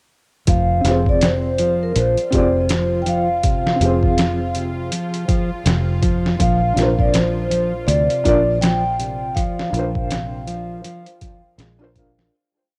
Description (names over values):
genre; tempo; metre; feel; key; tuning
trip hop; 81 BPM; 4/4; swing 59% on 16ths; F dorian; A4 = 439 Hz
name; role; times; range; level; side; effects
vibraphone with medium mallets; melody; 0.5-11.5 s; Bb4 to G5; -24 LUFS; equal; vintage 12-bit sampler grit, cassette tape, dub echo
nylon-string guitar; arpeggios; 0.5-12.2 s; C3 to Ab3; -28 LUFS; equal; cassette tape, tape echo
fingered electric bass; bass; 0.5-12.3 s; F1 to D2; -24 LUFS; equal; none
boom bap sampler-style drum kit; drums; 0.5-12.3 s; hi-hat, kick drum, snare drum; -23 LUFS; equal; none
bowed-like drone; texture; 1.9-12.3 s; F4; -36 LUFS; equal; built-in reverb, cassette tape
felt-muted upright piano; accompaniment; 0.8-12.3 s; C4 to F5; -26 LUFS; equal; tremolo, low-pass filter, cassette tape
room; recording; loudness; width
light reverb, small room ambience; home recording on cassette; -18 LUFS; mono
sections
0.5-12.3 groove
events
filter sweep on felt piano 0.5-12.3; fade-out 8.4-12.3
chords
0.5 Fm; 6.4 Bbadd9